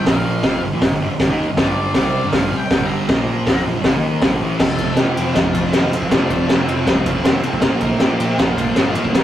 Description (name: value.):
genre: garage rock duo or trio.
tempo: 159 BPM.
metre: 4/4.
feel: straight.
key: unclear.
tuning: A4 = 439 Hz.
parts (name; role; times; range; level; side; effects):
octave-fuzz lead guitar; melody; 0.0-9.2 s; C4 to Bb5; -27 LUFS; left 2 dB; distortion.
thick fuzz guitar; riff; 0.0-9.2 s; F2 to F4; -20 LUFS; right 1 dB; distortion.
fuzz picked electric bass; bass; 0.0-9.2 s; F1 to Bb2; -28 LUFS; equal; none.
raw garage drum kit; drums; 0.1-9.2 s; crash cymbal, hi-hat, kick drum, ride cymbal, snare drum; -17 LUFS; equal; none.
room: moderate studio ambience, RT60 0.5 s.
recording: rough rehearsal-room recording.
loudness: -15 LUFS.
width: side -12 dB against mid.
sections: 0.0-4.6 A section; 4.6-9.2 B section.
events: none.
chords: 0.1 Bb5; 0.5 Gm; 3.1 Bb5; 3.5 Gm; 4.6 F5; 7.6 Bb5.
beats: | 0.07 0.45 0.83 1.21 | 1.58 1.96 2.34 2.72 | 3.10 3.47 3.85 4.23 | 4.61 4.99 5.36 5.74 | 6.12 6.50 6.88 7.26 | 7.64 8.02 8.40 8.78 | 9.16.